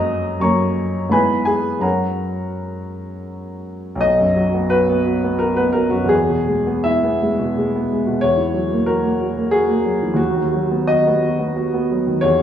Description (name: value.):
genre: classical, romantic character piece for solo piano.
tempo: 77-94 BPM.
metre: 3/4.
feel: rubato.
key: B major.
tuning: A4 = 438 Hz.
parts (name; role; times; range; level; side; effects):
warm grand piano; solo; 0.0-12.4 s; B1 to D#6; -16 LUFS; equal; none.
room: wet recital hall reverb, RT60 1.7 s.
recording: small room ambience.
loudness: -16 LUFS.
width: side -9 dB against mid.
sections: 0.0-4.0 A section; 4.0-12.4 B section.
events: none.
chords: 0.0 F#; 1.1 E/G#; 1.8 F#; 4.0 B; 6.1 E; 8.2 F#7/E; 10.2 B/D#.